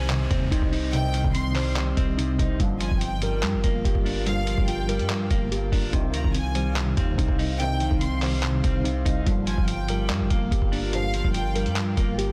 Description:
hip hop, trap; 144 BPM; 4/4; half-time; C minor; A4 = 440 Hz
warm studio violin section; second line; 0.0-11.7 s; F5 to C6; -37 LUFS; equal; delay
clean electric guitar; accompaniment; 0.0-12.3 s; G2 to Eb4; -31 LUFS; equal; harmonic tremolo, low-pass filter
glassy FM pad; sustained chords; 0.6-12.3 s; G3 to F5; -40 LUFS; equal; ensemble chorus, built-in reverb, tremolo
muted felt-like synth keys; arpeggios; 0.0-12.3 s; C3 to C5; -33 LUFS; equal; chorus, low-pass filter, delay
distorted 808-style bass; bass; 0.0-12.3 s; G1 to G2; -30 LUFS; equal; distortion
downlifter; sound effects; 0.0-2.6 s; -46 LUFS; equal
lo-fi sampler-style drum kit; drums; 0.1-12.3 s; handclaps, hi-hat, kick drum; -28 LUFS; equal
mellow brass ensemble; stabs; 0.9-11.2 s; G2 to F3; -38 LUFS; equal
digital ambience; dense, heavily limited modern master; -24 LUFS; mono
0.0-12.3 A section
0.0 Cm; 2.6 Gm7; 5.9 Cm; 9.3 Gm7
0.10 0.51 | 0.93 1.35 1.76 2.18 | 2.60 3.01 3.43 3.85 | 4.26 4.68 5.10 5.51 | 5.93 6.35 6.76 7.18 | 7.60 8.01 8.43 8.85 | 9.26 9.68 10.10 10.51 | 10.93 11.35 11.76 12.18

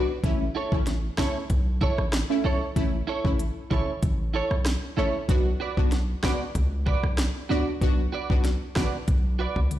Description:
dancehall; 95 BPM; 4/4; straight; A major; A4 = 440 Hz
synth brass stab; accompaniment; 0.0-9.0 s; A3 to F#4; -30 LUFS; left 1 dB; chorus, phaser
clean electric guitar; arpeggios; 0.0-9.6 s; E4 to D5; -31 LUFS; right 4 dB; ensemble chorus
hard-hitting 808-style bass; bass; 0.0-9.8 s; G#1 to C#2; -26 LUFS; equal
island pop drum kit; drums; 0.2-9.8 s; hi-hat, kick drum, rim click, snare drum, toms; -26 LUFS; equal
light reverb; played on a big sound system in a bare room, large studio reverb; -23 LUFS; side -13 dB against mid
0.0-9.8 A section
0.2 A; 5.3 Bm
| 0.24 0.87 1.50 2.13 | 2.76 3.39 4.03 4.66 | 5.29 5.92 6.55 7.18 | 7.82 8.45 9.08 9.71

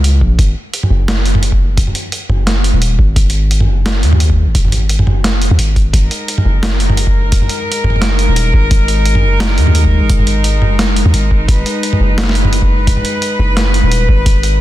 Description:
half-time drum and bass; 173 BPM; 4/4; swing 55% on 16ths, half-time; G# minor; A4 = 437 Hz
long sustained 808-style bass; bass; 0.0-14.6 s; D#1 to D#2; -12 LUFS; equal
boom bap sampler-style drum kit; drums; 0.0-14.5 s; hi-hat, snare drum, toms; -17 LUFS; right 1 dB
electronic kick drum; drums; 0.2-14.3 s; -12 LUFS; equal
warm studio cello section; sustained chords; 5.9-14.6 s; G#3 to B4; -18 LUFS; left 1 dB; sidechain pumping
digital ambience; dense, heavily limited modern master; -10 LUFS; side -14 dB against mid
0.0-14.6 A section
0.0 G#m
0.04 | 0.39 0.73 1.08 1.43 | 1.77 2.12 2.47 2.81 | 3.16 3.51 3.86 4.20 | 4.55 4.90 5.24 5.59 | 5.94 6.28 6.63 6.98 | 7.32 7.67 8.02 8.36 | 8.71 9.06 9.40 9.75 | 10.10 10.45 10.79 11.14 | 11.49 11.83 12.18 12.53 | 12.87 13.22 13.57 13.91 | 14.26 14.61

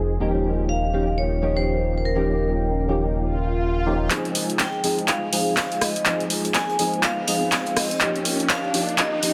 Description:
deep house; 123 BPM; 4/4; swing 60% on 16ths; F minor; A4 = 439 Hz
deep dark ambient pad; sustained chords; 0.0-9.3 s; Db4 to Ab5; -38 LUFS; equal
percussive organ stab; stabs; 0.0-9.3 s; F3 to Ab4; -28 LUFS; equal; ensemble chorus, sidechain pumping, dub echo
smooth synth bass; bass; 0.0-4.1 s; Eb1 to F1; -27 LUFS; equal; sidechain pumping
vibraphone with hard mallets; melody; 0.7-9.3 s; Bb4 to Ab5; -29 LUFS; equal
swell and riser; sound effects; 3.3-9.3 s; -34 LUFS; equal
electronic kick drum; drums; 4.1-9.1 s; -36 LUFS; equal
open jazz drum kit; drums; 4.1-9.3 s; hi-hat, snare drum; -37 LUFS; equal
punchy analog drum machine; drums; 4.1-9.3 s; handclaps, hi-hat, rim click; -25 LUFS; equal
light reverb, small room ambience; low-pass filter; -22 LUFS; mono
0.0-4.1 A section; 4.1-9.3 B section
filter sweep 0.0-4.1; swell 3.3-4.1; build-up 4.1-9.3; drum fill 4.1-9.3; riser 4.1-9.3; filter sweep on synth stab 4.1-9.3
0.2 Eb9; 4.1 Fm7; 8.0 Eb9
| 0.20 0.69 1.18 1.67 | 2.16 2.64 3.13 3.62 | 4.11 4.59 5.08 5.57 | 6.06 6.55 7.03 7.52 | 8.01 8.50 8.98

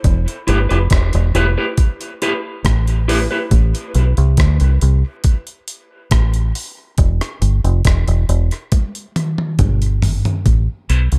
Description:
dub reggae; 69 BPM; 4/4; straight; A minor; A4 = 444 Hz
deep dub fingered electric bass; bass; 0.0-11.2 s; E1 to D2; -16 LUFS; equal
breakbeat sampler-style drum kit; drums; 0.0-11.2 s; hi-hat, kick drum, rim click, toms; -19 LUFS; equal
electric guitar at the edge of break-up; accompaniment; 0.5-3.4, 10.9-11.0 s; E4 to C5; -24 LUFS; equal; high-pass filter, tape echo
digital ambience; -16 LUFS; mono
0.0-10.5 A section
filter sweep on clean electric guitar 7.0-11.2; drum fill 8.7-10.5
0.0 Em; 3.5 Am; 7.0 N.C.; 10.5 Am
| 0.04 0.91 1.78 2.65 | 3.51 4.38 5.25 6.11 | 6.98 7.85 8.72 9.59 | 10.46

